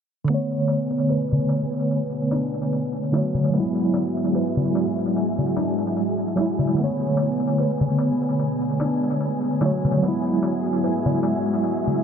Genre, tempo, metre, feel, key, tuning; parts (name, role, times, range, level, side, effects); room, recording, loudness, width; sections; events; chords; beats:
trip hop; 74 BPM; 4/4; swing 56% on 16ths; B dorian; A4 = 440 Hz
tine electric piano; accompaniment; 0.2-12.0 s; D3 to C#5; -23 LUFS; equal; fast stereo tremolo, low-pass filter, tape echo
string machine, cellos; sustained chords; 0.3-12.0 s; G#3 to E5; -26 LUFS; left 1 dB; ensemble chorus
felt-muted upright piano; arpeggios; 0.3-12.0 s; F#3 to B4; -29 LUFS; right 2 dB; vintage 12-bit sampler grit, low-pass filter, tape echo
darbuka; percussion; 0.3-12.0 s; -28 LUFS; left 2 dB; tape echo
flickering grainy texture; texture; 0.7-12.0 s; G#3 to G#5; -34 LUFS; left 1 dB; built-in reverb
light reverb, small room ambience; echo-heavy mix, low-pass filter; -20 LUFS; side -7 dB against mid
0.3-12.0 A section
filter sweep on tine electric piano 0.3-12.0; filter sweep on string machine 0.3-12.0; filter sweep on felt piano 0.3-12.0
0.3 Bm7; 3.5 Eadd9; 6.8 Bm7; 10.0 Eadd9
| 0.30 1.11 1.92 2.73 | 3.54 4.35 5.16 5.97 | 6.78 7.59 8.40 9.21 | 10.03 10.84 11.65